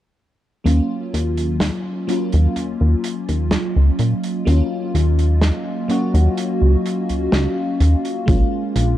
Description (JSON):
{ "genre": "vaporwave", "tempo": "63 BPM", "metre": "4/4", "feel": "straight", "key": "Eb minor", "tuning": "A4 = 441 Hz", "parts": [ { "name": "FM electric piano with soft pad layer", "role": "accompaniment", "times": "0.6-9.0 s", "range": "Gb3 to Gb4", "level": "-22 LUFS", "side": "left 1 dB", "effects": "phaser, analog chorus, cassette tape, tape echo" }, { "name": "warbly tape-like pad", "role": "sustained chords", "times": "1.6-9.0 s", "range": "Gb3 to F5", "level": "-28 LUFS", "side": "right 1 dB", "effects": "chorus, built-in reverb" }, { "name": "chorused synth bass", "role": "bass", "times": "0.7-9.0 s", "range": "Bb1 to Bb2", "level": "-15 LUFS", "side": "equal", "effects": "none" }, { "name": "loose indie drum kit", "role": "drums", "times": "0.7-9.0 s", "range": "hi-hat, snare drum", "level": "-25 LUFS", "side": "right 1 dB", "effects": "none" }, { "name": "electronic kick drum", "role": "drums", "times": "8.3-8.5 s", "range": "none", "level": "-17 LUFS", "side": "equal", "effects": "none" } ], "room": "studio reverb", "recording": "dark, warm production", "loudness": "-16 LUFS", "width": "side -13 dB against mid", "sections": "0.7-9.0 A section", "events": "filter sweep on ambient pad 0.7-9.0", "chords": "0.7 Ebm9; 8.3 Bbm7" }